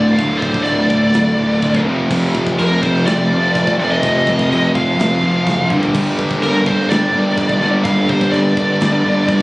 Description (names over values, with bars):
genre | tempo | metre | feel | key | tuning
heavy metal | 125 BPM | 4/4 | straight | unclear | A4 = 440 Hz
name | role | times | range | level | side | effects
high-gain lead guitar | melody | 0.0-9.4 s | Bb4 to F5 | -18 LUFS | equal | distortion, slapback echo
warm studio string section | sustained chords | 0.0-9.4 s | D3 to Bb4 | -27 LUFS | equal | none
fuzz guitar | riff | 0.0-9.4 s | D2 to G4 | -24 LUFS | equal | none
heavy high-gain guitar | riff | 0.0-9.4 s | D2 to G3 | -21 LUFS | left 2 dB | distortion
sludgy distorted guitar | riff | 0.0-9.4 s | D2 to G3 | -20 LUFS | right 2 dB | overdrive
fuzz picked electric bass | bass | 0.0-9.4 s | D1 to G1 | -19 LUFS | equal | overdrive
tight metal drum kit | drums | 0.2-9.4 s | china cymbal, crash cymbal, kick drum, snare drum, toms | -23 LUFS | equal | none
room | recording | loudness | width
little or no reverb | recorded on a phone in the room, studio reverb, vinyl crackle, compression | -13 LUFS | side -21 dB against mid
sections
0.0-9.4 A section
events
drum fill 5.5-5.9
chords
0.0 Dm; 1.9 F; 5.7 Gm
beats
| 0.19 0.67 1.15 1.63 | 2.11 2.59 3.06 3.54 | 4.03 4.50 4.98 5.46 | 5.94 6.42 6.90 7.38 | 7.86 8.33 8.81 9.29